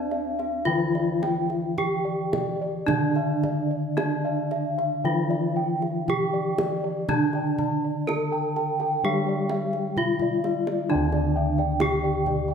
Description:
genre	Javanese gamelan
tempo	54-66 BPM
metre	4/4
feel	straight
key	D slendro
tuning	A4 = 444 Hz
part	gamelan-type bronze metallophone	melody	0.0-12.5 s	D4 to A4+20c	-27 LUFS	equal	none
part	gamelan-type bronze metallophone	accompaniment	0.0-12.5 s	D3 to C4-40c	-30 LUFS	left 2 dB	none
part	gamelan-type bossed gongs	arpeggios	0.0-12.5 s	D5 to A5+20c	-33 LUFS	left 7 dB	none
part	gamelan-type bronze metallophone	arpeggios	0.0-12.5 s	D5 to A5+20c	-31 LUFS	right 3 dB	none
part	gamelan-type bossed gongs	bass	0.0-12.5 s	D2 to C5-40c	-31 LUFS	right 1 dB	none
part	kendang	percussion	0.1-12.5 s	none	-33 LUFS	right 3 dB	none
room	moderate scoring stage reverb, RT60 1.9 s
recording	none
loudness	-22 LUFS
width	side -7 dB against mid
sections	0.0-10.9 A section; 10.9-12.5 B section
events	drum fill 10.2-10.9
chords	none

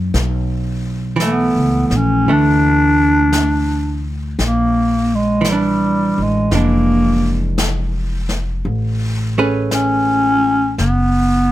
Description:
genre	jazz ballad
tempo	56 BPM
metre	4/4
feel	swing 69% on 8ths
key	A major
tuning	A4 = 439 Hz
part	archtop guitar, miked and amplified	accompaniment	0.0-10.8 s	E3 to B4	-21 LUFS	right 3 dB	none
part	upright bass	bass	0.0-11.5 s	F1 to D2	-18 LUFS	equal	none
part	jazz brush drum kit	drums	0.1-11.5 s	brushed snare drum, hi-hat, snare drum	-26 LUFS	left 2 dB	none
part	growling clarinet	melody	1.2-11.5 s	G3 to D4	-15 LUFS	equal	none
room	little or no reverb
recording	close, detailed microphones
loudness	-14 LUFS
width	side -14 dB against mid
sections	0.0-11.5 A section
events	none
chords	0.1 Bm11; 4.4 Bb7#11; 8.6 Amaj9; 10.8 N.C.

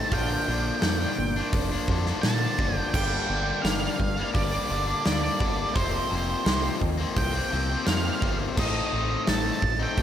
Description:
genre	post-rock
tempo	85 BPM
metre	4/4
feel	straight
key	G minor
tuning	A4 = 441 Hz
part	octave-fuzz lead guitar	melody	0.0-10.0 s	C5 to A5	-30 LUFS	right 3 dB	distortion, digital delay
part	pedal steel guitar	sustained chords	0.0-10.0 s	D4 to Bb5	-39 LUFS	right 6 dB	none
part	crunchy overdriven guitar	riff	0.0-10.0 s	F2 to Eb4	-29 LUFS	left 5 dB	slapback echo
part	fingered electric bass	bass	0.1-10.0 s	F1 to Bb2	-30 LUFS	right 1 dB	none
part	huge arena drum kit	drums	0.1-10.0 s	crash cymbal, hi-hat, kick drum, snare drum	-28 LUFS	equal	none
room	moderate lush hall reverb, RT60 2.0 s, small room ambience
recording	big arena sound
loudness	-23 LUFS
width	side -10 dB against mid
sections	0.0-10.0 A section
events	none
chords	0.1 Bb; 2.9 Gm7; 5.7 Fsus4; 8.6 Adim

